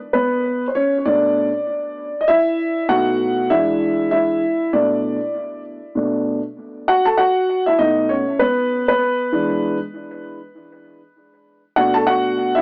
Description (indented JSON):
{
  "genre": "hip hop",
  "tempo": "98 BPM",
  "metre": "4/4",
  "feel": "swing 59% on 16ths",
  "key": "B dorian",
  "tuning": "A4 = 440 Hz",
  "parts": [
    { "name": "dark grand piano", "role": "solo", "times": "0.1-12.6 s", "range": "B2 to A5", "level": "-19 LUFS", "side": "equal", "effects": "analog delay" }
  ],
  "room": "light reverb",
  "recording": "dry, gritty hardware recording, AM radio sound",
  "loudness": "-19 LUFS",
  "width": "mono",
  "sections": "0.0-6.0 A section; 6.0-12.6 B section",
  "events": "grand piano solo 0.0-6.0, 6.0-12.6",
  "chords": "0.0 N.C.; 1.1 Bm7; 2.9 B7; 3.5 E7; 4.7 Bm7; 7.8 B9; 8.4 E7; 10.9 Bm7"
}